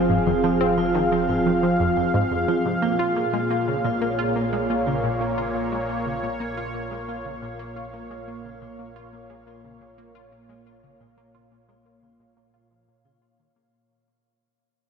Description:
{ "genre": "ambient, sequencer-driven space music", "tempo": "88 BPM", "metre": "4/4", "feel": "straight", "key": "unclear", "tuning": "A4 = 440 Hz", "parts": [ { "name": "sweeping resonant pad", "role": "sustained chords", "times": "0.0-13.7 s", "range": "Bb2 to F5", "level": "-24 LUFS", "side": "right 1 dB", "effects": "chorus" }, { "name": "tight sequenced synth", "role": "riff", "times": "0.0-13.7 s", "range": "F2 to F4", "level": "-26 LUFS", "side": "equal", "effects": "chorus, phaser, ping-pong delay" }, { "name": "round analog bass", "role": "bass", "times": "0.0-13.7 s", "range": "F1 to Bb1", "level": "-41 LUFS", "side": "equal", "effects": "none" }, { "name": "vibraphone with medium mallets", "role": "arpeggios", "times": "0.3-13.6 s", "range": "Eb4 to F4", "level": "-30 LUFS", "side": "moving between left 7 dB and equal", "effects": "auto-pan, ping-pong delay" } ], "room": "wet huge ambient reverb, RT60 8.2 s", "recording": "in a vast, echoing space", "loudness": "-21 LUFS", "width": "side -6 dB against mid", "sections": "0.0-13.7 A section", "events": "fade-out on synth arpeggio sound 0.0-13.7; fade-out on vibraphone 0.0-13.7; fade-out on analog synth bass 0.0-13.7; fade-out 0.0-13.7", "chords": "0.0 Fm; 2.8 Bbm", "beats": "| 0.10 0.78 1.46 2.14 | 2.82 3.50 4.19 4.87 | 5.55 6.23 6.91 7.59 | 8.28 8.96 9.64 10.32 | 11.00 11.69 12.37 13.05" }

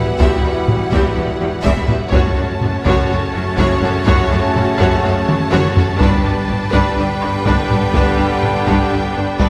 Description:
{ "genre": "cinematic, epic orchestral film score", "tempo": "124 BPM", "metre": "4/4", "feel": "straight", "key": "unclear", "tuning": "A4 = 440 Hz", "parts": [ { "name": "rich symphonic violin section", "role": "melody", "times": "0.0-9.5 s", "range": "F#5 to A5", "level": "-30 LUFS", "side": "equal", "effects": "none" }, { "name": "warm symphonic violin section", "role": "second line", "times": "0.0-9.5 s", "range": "D4 to E5", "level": "-27 LUFS", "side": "equal", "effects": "none" }, { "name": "rich symphonic viola section", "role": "accompaniment", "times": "0.0-9.5 s", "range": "D4 to G4", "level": "-26 LUFS", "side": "equal", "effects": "none" }, { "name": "clear symphonic string section", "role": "sustained chords", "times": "0.0-9.5 s", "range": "G3 to G5", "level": "-25 LUFS", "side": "equal", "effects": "none" }, { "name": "warm French horn section", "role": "sustained chords", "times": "0.0-9.5 s", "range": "B3 to G4", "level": "-28 LUFS", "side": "equal", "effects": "none" }, { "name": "warm trombone section", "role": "sustained chords", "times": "0.0-9.5 s", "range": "C#3 to A3", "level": "-27 LUFS", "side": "equal", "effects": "none" }, { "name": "bright symphonic cello section", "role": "bass", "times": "0.0-9.5 s", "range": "E2 to G2", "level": "-24 LUFS", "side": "equal", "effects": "none" }, { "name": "rich symphonic double bass section", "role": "bass", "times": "0.0-9.5 s", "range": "E1 to G1", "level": "-25 LUFS", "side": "equal", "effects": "none" }, { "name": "taiko ensemble", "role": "drums", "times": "0.2-9.5 s", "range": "none", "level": "-20 LUFS", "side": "equal", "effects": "none" } ], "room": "wet scoring stage reverb, RT60 1.9 s", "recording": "heard from further back in the room", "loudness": "-16 LUFS", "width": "mono", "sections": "0.0-9.5 A section", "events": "drum fill 5.3-6.0", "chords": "0.0 Emadd9; 2.1 F#m; 6.0 G", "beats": "| 0.20 0.68 1.17 1.65 | 2.13 2.62 3.10 3.59 | 4.07 4.55 5.04 5.52 | 6.01 6.49 6.97 7.46 | 7.94 8.43 8.91 9.39" }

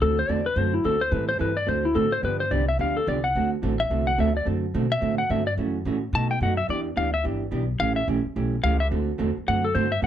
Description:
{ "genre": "country, western swing", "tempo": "216 BPM", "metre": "4/4", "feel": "swing 60% on 8ths", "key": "D mixolydian", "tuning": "A4 = 440 Hz", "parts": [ { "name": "clean lap steel guitar", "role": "melody", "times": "0.0-10.1 s", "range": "E4 to A5", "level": "-24 LUFS", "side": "left 2 dB", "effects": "none" }, { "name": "vintage hollow-body jazz guitar", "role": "accompaniment", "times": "0.0-10.1 s", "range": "B2 to A4", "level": "-27 LUFS", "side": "right 4 dB", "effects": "none" }, { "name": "upright bass", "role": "bass", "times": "0.0-10.1 s", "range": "G1 to B2", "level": "-27 LUFS", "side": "equal", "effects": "none" } ], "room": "moderate club reverb, RT60 0.7 s", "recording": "none", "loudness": "-22 LUFS", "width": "side -10 dB against mid", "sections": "0.0-10.1 A section", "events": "electric slide guitar solo 0.0-10.1", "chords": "0.0 D7; 1.1 Am7; 1.7 D7; 2.2 G7; 3.3 D7; 5.6 F#m7; 6.1 B7; 6.7 Em7; 7.8 A7; 8.9 D7", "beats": "| 0.01 0.28 0.56 0.84 | 1.12 1.40 1.68 1.96 | 2.23 2.51 2.79 3.07 | 3.35 3.63 3.90 4.18 | 4.46 4.74 5.02 5.29 | 5.57 5.85 6.13 6.41 | 6.69 6.96 7.24 7.52 | 7.80 8.08 8.35 8.63 | 8.91 9.19 9.47 9.74 | 10.02" }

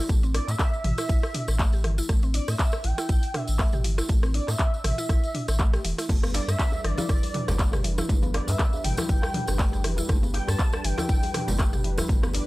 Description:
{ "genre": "afro house", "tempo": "120 BPM", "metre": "4/4", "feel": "swing 56% on 16ths", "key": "unclear", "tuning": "A4 = 438 Hz", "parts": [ { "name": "mallet-like synth pluck", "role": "arpeggios", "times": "0.0-12.5 s", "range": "E3 to G4", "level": "-34 LUFS", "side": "equal", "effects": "chorus, sidechain pumping, tape echo" }, { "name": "warm sub bass", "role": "bass", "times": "0.1-12.4 s", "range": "E1 to A2", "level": "-26 LUFS", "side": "equal", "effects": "sidechain pumping" }, { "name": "electronic kick drum", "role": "drums", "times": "0.1-12.2 s", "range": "none", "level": "-23 LUFS", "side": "equal", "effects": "small room ambience" }, { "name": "house drum kit", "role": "drums", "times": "0.1-12.5 s", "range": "crash cymbal, handclaps, hi-hat, rim click, toms", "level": "-31 LUFS", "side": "equal", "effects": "small room ambience" }, { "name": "tambourine", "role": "percussion", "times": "0.1-12.3 s", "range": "none", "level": "-39 LUFS", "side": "right 1 dB", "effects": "none" }, { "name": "expressive synth lead", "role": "melody", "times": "0.3-12.5 s", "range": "D5 to A5", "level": "-34 LUFS", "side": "equal", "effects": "ensemble chorus, tape echo" }, { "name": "warm analog pad", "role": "sustained chords", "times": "6.1-12.5 s", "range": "G3 to B4", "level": "-37 LUFS", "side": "equal", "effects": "chorus, sidechain pumping" }, { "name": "congas", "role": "percussion", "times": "6.1-12.3 s", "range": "none", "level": "-34 LUFS", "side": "equal", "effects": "none" }, { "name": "djembe", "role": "percussion", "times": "6.2-12.4 s", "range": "none", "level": "-37 LUFS", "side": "left 1 dB", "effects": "none" } ], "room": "little or no reverb", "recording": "dry, gritty hardware recording", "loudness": "-22 LUFS", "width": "side -19 dB against mid", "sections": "0.0-12.5 A section", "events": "none", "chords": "0.0 A7(no3); 6.1 G", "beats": "| 0.09 0.59 1.09 1.59 | 2.09 2.59 3.09 3.59 | 4.09 4.59 5.09 5.59 | 6.09 6.59 7.09 7.59 | 8.09 8.59 9.09 9.59 | 10.09 10.59 11.09 11.59 | 12.09" }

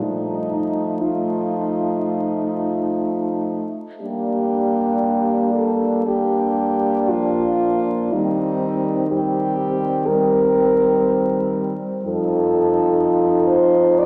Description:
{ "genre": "classical, lyrical piece for horn quartet", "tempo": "60 BPM", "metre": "4/4", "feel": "uneven beats, rubato", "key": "unclear", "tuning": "A4 = 440 Hz", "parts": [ { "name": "mellow French horn", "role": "melody", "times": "0.0-14.1 s", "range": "Eb4 to D5", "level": "-23 LUFS", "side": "equal", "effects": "none" }, { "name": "warm French horn", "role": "second line", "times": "0.0-14.1 s", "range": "C4 to Eb4", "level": "-27 LUFS", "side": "equal", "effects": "none" }, { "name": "mellow French horn", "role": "accompaniment", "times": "0.0-14.1 s", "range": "F3 to Bb3", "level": "-25 LUFS", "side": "equal", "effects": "none" }, { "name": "warm French horn", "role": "bass", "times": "0.0-14.1 s", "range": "F2 to G3", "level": "-30 LUFS", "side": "equal", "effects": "none" } ], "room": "wet church reverb, RT60 3.2 s", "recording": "vinyl crackle", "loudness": "-20 LUFS", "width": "mono", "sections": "0.0-14.1 A section", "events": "none", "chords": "0.0 F7; 4.0 Gm; 8.1 Cm7/Eb; 12.0 F7", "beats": "| 0.02 1.03 2.05 3.03 | 4.02 5.06 6.07 7.12 | 8.14 9.13 10.08 11.07 | 12.04 13.00 14.01" }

